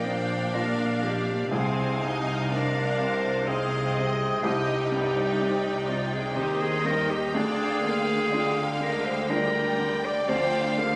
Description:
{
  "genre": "cinematic, emotional film score for orchestra",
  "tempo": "62 BPM",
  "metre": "3/4",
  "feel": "rubato",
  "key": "unclear",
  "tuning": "A4 = 442 Hz",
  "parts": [
    { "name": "rich studio violin section", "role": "melody", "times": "0.0-11.0 s", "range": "Eb5 to G5", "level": "-38 LUFS", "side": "equal", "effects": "none" },
    { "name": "clear clarinet", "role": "second line", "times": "0.0-11.0 s", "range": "F4 to D5", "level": "-30 LUFS", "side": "equal", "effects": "none" },
    { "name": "clear studio violin section", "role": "second line", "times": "0.0-11.0 s", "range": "C5 to Ab5", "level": "-36 LUFS", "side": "equal", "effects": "none" },
    { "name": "felt-muted upright piano", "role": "accompaniment", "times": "0.0-11.0 s", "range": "Bb1 to D5", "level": "-34 LUFS", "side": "equal", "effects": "none" },
    { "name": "rich studio viola section", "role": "accompaniment", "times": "0.0-11.0 s", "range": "F3 to Eb4", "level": "-36 LUFS", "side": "equal", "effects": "none" },
    { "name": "clear studio cello section", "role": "bass", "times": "0.0-11.0 s", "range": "Bb2 to Eb3", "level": "-36 LUFS", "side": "equal", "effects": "none" },
    { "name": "rich studio double bass section", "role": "bass", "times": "0.0-11.0 s", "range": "Bb1 to Eb2", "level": "-35 LUFS", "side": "equal", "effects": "none" }
  ],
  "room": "moderate scoring stage reverb, RT60 1.9 s",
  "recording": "recorded on a phone in the room, club reverb, compression",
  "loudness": "-26 LUFS",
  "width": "mono",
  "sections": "0.0-11.0 A section",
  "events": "none",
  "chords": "0.0 Bb; 1.5 Ab/C; 4.4 Cm; 7.3 Ddim",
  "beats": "0.53 | 1.51 2.49 3.46 | 4.43 5.40 6.36 | 7.35 8.33 9.30 | 10.29"
}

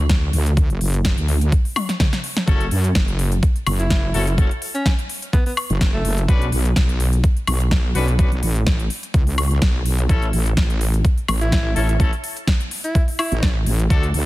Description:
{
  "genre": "bass house",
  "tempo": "126 BPM",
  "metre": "4/4",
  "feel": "swing 54% on 16ths",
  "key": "unclear",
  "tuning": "A4 = 441 Hz",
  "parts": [
    { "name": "wobble bass", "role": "bass", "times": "0.0-14.3 s", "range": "F#1 to F#2", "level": "-19 LUFS", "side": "equal", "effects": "chorus, tube saturation, sidechain pumping" },
    { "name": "big-room dance drum kit", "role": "drums", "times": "0.1-14.2 s", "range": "hi-hat, snare drum, toms, woodblock", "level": "-25 LUFS", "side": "left 1 dB", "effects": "overdrive, studio reverb" },
    { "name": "electronic kick drum", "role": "drums", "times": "0.1-14.0 s", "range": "none", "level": "-18 LUFS", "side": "equal", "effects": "overdrive, studio reverb" },
    { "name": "clear horn section", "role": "stabs", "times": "2.5-14.1 s", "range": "A3 to B4", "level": "-28 LUFS", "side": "left 4 dB", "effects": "sidechain pumping, digital delay" },
    { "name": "breathy alto saxophone", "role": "melody", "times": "3.8-6.3, 11.4-13.6 s", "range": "A3 to E4", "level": "-27 LUFS", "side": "equal", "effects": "digital delay" }
  ],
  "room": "digital ambience",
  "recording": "dense, heavily limited modern master",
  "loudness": "-16 LUFS",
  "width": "side -18 dB against mid",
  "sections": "0.0-14.3 A section",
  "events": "drum fill 1.8-2.5",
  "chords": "0.0 D; 2.5 F#m; 6.3 Bsus2; 10.1 A5",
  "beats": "0.09 | 0.57 1.05 1.52 2.00 | 2.48 2.95 3.43 3.90 | 4.38 4.86 5.33 5.81 | 6.29 6.76 7.24 7.71 | 8.19 8.67 9.14 9.62 | 10.09 10.57 11.05 11.52 | 12.00 12.47 12.95 13.43 | 13.90"
}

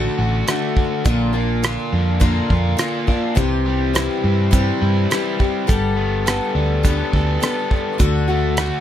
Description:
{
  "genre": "folk rock and heartland rock",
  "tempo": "104 BPM",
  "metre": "4/4",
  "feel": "straight",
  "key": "unclear",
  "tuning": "A4 = 440 Hz",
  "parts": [
    { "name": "picked acoustic archtop guitar", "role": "accompaniment", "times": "0.0-8.8 s", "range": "Bb2 to A4", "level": "-22 LUFS", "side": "left 4 dB", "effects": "none" },
    { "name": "overdriven electric guitar", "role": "riff", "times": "0.0-8.8 s", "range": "Bb2 to A4", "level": "-23 LUFS", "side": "right 1 dB", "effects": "none" },
    { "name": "hollow-body short-scale fingered electric bass", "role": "bass", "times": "0.0-8.7 s", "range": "G1 to G2", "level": "-20 LUFS", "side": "equal", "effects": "none" },
    { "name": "damped 70s drum kit", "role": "drums", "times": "0.5-8.7 s", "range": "hi-hat, kick drum, rim click", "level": "-18 LUFS", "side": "right 1 dB", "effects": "none" }
  ],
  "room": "light reverb",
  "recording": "none",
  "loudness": "-16 LUFS",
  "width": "side -11 dB against mid",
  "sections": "0.0-8.8 A section",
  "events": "none",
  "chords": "0.0 D; 1.1 Bb; 3.4 C; 5.7 Gadd9; 8.0 D",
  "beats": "0.47 | 1.05 1.63 2.21 2.79 | 3.37 3.95 4.53 5.10 | 5.68 6.26 6.84 7.42 | 7.99 8.57"
}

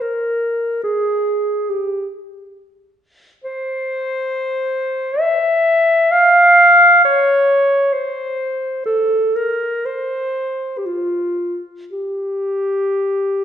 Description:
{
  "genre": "classical, free, expressive piece for unaccompanied clarinet",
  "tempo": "free time",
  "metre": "none",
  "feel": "none",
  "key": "unclear",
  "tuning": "A4 = 440 Hz",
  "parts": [
    { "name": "mellow clarinet", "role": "solo", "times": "0.0-13.4 s", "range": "F4 to F5", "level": "-14 LUFS", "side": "equal", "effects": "none" }
  ],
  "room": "wet recital hall reverb, RT60 1.5 s",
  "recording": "recorded in a church or concert hall, nothing above 10.5 kHz",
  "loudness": "-14 LUFS",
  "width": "side -9 dB against mid",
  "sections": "0.0-13.4 A section",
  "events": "none",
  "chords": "none",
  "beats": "free time"
}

